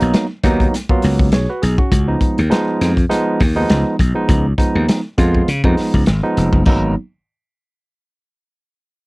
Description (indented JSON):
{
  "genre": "funk",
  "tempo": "101 BPM",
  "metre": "4/4",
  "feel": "swing 56% on 16ths",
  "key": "G# dorian",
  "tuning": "A4 = 441 Hz",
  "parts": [
    { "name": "barky tine electric piano", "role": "stabs", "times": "0.0-6.9 s", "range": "E#3 to C#5", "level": "-18 LUFS", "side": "right 1 dB", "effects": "none" },
    { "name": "slap bass", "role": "bass", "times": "0.0-6.9 s", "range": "E#1 to C#3", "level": "-16 LUFS", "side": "equal", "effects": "none" },
    { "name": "crunchy breakbeat drum kit", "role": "drums", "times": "0.0-6.8 s", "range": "hi-hat, kick drum, snare drum, splash cymbal", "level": "-16 LUFS", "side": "equal", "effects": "none" }
  ],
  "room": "little or no reverb",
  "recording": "dry, close 1970s-style studio recording",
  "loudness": "-13 LUFS",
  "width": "side -24 dB against mid",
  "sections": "0.0-6.7 A section; 6.7-9.0 B section",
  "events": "none",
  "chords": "0.0 G#m7; 1.9 C#9; 6.7 G#m7",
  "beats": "0.13 0.73 1.32 | 1.92 2.51 3.10 3.70 | 4.29 4.88 5.48 6.07 | 6.67"
}